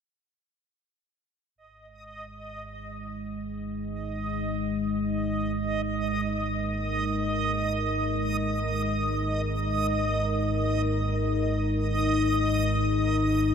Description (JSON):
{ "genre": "dark ambient drone", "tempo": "free time", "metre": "none", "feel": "none", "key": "unclear", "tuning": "A4 = 440 Hz", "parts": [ { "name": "deep dark ambient pad", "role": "sustained chords", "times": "2.9-13.5 s", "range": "G#3 to A#4", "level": "-29 LUFS", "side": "left 2 dB", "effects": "chorus, built-in reverb" }, { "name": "deep rumbling drone", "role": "drone", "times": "2.2-13.5 s", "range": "G#1 to G#2", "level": "-30 LUFS", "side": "right 1 dB", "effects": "built-in reverb, lush chorus" }, { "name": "backwards swelling texture", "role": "texture", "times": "2.1-13.5 s", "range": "D#5", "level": "-31 LUFS", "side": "right 2 dB", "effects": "built-in reverb" } ], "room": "wet huge ambient reverb, RT60 7.0 s", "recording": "dreamy mix soaked in reverb", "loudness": "-25 LUFS", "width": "side -7 dB against mid", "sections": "1.6-13.5 A section", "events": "none", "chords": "1.6 G#5" }